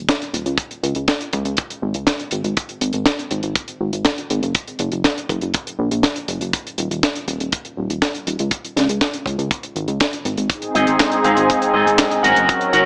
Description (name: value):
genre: italo disco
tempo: 121 BPM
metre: 4/4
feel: straight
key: unclear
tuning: A4 = 439 Hz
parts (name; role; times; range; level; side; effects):
- chorused synth bass; bass; 0.0-12.8 s; Eb1 to Db2; -22 LUFS; equal; digital delay
- kick drum; drums; 0.1-12.6 s; none; -21 LUFS; equal; none
- tight funk drum kit; drums; 0.1-12.8 s; handclaps, hi-hat, snare drum; -20 LUFS; equal; none
- lush unison pad; sustained chords; 10.5-12.9 s; Gb3 to Db5; -16 LUFS; equal; chorus, phaser, shimmer reverb
- electric guitar with an envelope filter; stabs; 10.7-12.9 s; Ab2 to Gb5; -16 LUFS; equal; spring reverb, shimmer reverb
room: moderate plate reverb, RT60 1.8 s, small room ambience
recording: small speaker sound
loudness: -17 LUFS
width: side -33 dB against mid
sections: 0.0-12.9 A section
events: none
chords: 0.0 Dbsus2/Eb; 0.6 Db5; 2.6 N.C.; 4.6 Gb; 6.5 N.C.; 8.5 Db5; 10.5 Ab